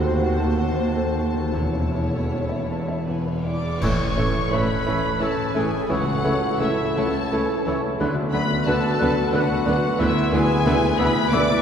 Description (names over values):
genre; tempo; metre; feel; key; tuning
classical, romantic movement for piano and orchestra; 76-91 BPM; 3/4; rubato; A major; A4 = 439 Hz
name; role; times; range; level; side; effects
warm baby grand piano; melody; 0.0-11.6 s; A1 to A5; -25 LUFS; equal; none
warm studio violin section; melody; 0.0-11.6 s; E5 to D6; -30 LUFS; left 4 dB; none
rich studio violin section; second line; 0.0-11.4 s; B3 to C#5; -33 LUFS; left 3 dB; none
warm studio viola section; accompaniment; 0.0-11.4 s; E3 to F#4; -30 LUFS; right 1 dB; none
dark studio double bass section; bass; 0.0-11.4 s; E1 to D#2; -28 LUFS; right 1 dB; none
mellow tuba; bass; 0.0-11.5 s; E1 to D#2; -30 LUFS; right 1 dB; none
warm studio cello section; bass; 0.0-11.4 s; D#2 to D3; -30 LUFS; right 1 dB; none
dark trumpet section; stabs; 3.5-11.6 s; E4 to D5; -28 LUFS; right 1 dB; none
clear oboe; second line; 3.8-11.5 s; B4 to C#5; -33 LUFS; equal; none
mellow flute section; second line; 3.8-11.4 s; E6 to F#6; -35 LUFS; left 1 dB; none
warm bassoon; accompaniment; 3.8-11.5 s; D3 to E3; -31 LUFS; right 1 dB; none
warm French horn section; sustained chords; 3.8-11.6 s; B3 to A4; -30 LUFS; left 2 dB; none
clash cymbals and concert bass drum; percussion; 3.8-5.2 s; none; -32 LUFS; equal; none
room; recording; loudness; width
wet cathedral reverb, RT60 5.0 s; heard from further back in the room; -19 LUFS; side -8 dB against mid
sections
0.0-3.8 A section; 3.8-11.6 B section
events
band accent 3.8-4.5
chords
0.0 D#dim7; 1.5 A/E; 3.1 E; 3.8 A; 5.9 A/C#; 8.0 Bm7/D; 10.0 E7/D